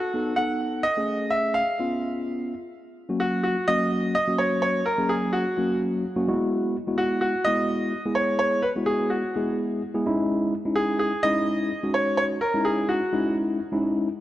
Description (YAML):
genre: pop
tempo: 127 BPM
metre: 4/4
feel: straight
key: unclear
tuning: A4 = 438 Hz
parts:
  - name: clear concert grand piano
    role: melody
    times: 0.0-13.3 s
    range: F#4 to F#5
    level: -24 LUFS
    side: equal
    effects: none
  - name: mellow tine electric piano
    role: accompaniment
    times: 0.1-14.1 s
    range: F#3 to A4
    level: -25 LUFS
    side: equal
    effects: auto-pan
room: moderate lush hall reverb, RT60 2.7 s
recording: worn, warbling old tape, cassette tape, warbly pitch drift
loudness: -22 LUFS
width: side -14 dB against mid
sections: 0.0-2.7 A section; 2.7-14.2 B section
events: none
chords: 0.0 B7; 0.8 Amaj7; 1.8 C#7; 2.7 F#; 6.3 Eadd9; 10.1 C#madd9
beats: 0.38 | 0.85 1.32 1.79 2.27 | 2.74 3.21 3.68 4.16 | 4.63 5.10 5.57 6.05 | 6.52 6.99 7.46 7.94 | 8.41 8.88 9.35 9.83 | 10.30 10.77 11.24 11.72 | 12.19 12.66 13.13 13.61 | 14.08